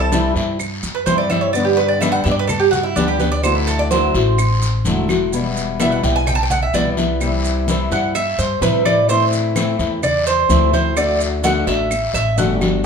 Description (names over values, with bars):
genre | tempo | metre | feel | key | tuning
latin, Cuban son and guajira | 127 BPM | 4/4 | straight | unclear | A4 = 441 Hz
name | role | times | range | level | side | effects
fingerpicked steel-string acoustic guitar | accompaniment | 0.0-12.8 s | B2 to G4 | -20 LUFS | left 4 dB | none
Cuban tres | arpeggios | 0.0-12.5 s | D4 to A5 | -18 LUFS | right 3 dB | none
upright bass | bass | 0.0-12.9 s | E1 to A2 | -21 LUFS | equal | none
congas | percussion | 0.1-12.8 s | none | -25 LUFS | equal | none
guiro | percussion | 0.1-12.8 s | none | -29 LUFS | left 3 dB | none
maracas | percussion | 0.1-12.8 s | none | -32 LUFS | right 8 dB | none
claves | percussion | 0.6-12.8 s | none | -31 LUFS | right 3 dB | none
room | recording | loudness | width
wet large studio reverb, RT60 0.9 s | band playing live in one room | -15 LUFS | side -6 dB against mid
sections
0.0-12.8 A section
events
Cuban tres solo 0.0-12.8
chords
0.0 C; 1.5 G; 3.4 Dadd9; 5.3 Em; 7.2 C; 9.1 Am; 11.0 D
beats
0.12 0.60 1.07 | 1.54 2.02 2.49 2.96 | 3.44 3.91 4.38 4.85 | 5.33 5.80 6.27 6.74 | 7.21 7.68 8.15 8.62 | 9.09 9.56 10.03 10.50 | 10.97 11.44 11.91 12.38 | 12.85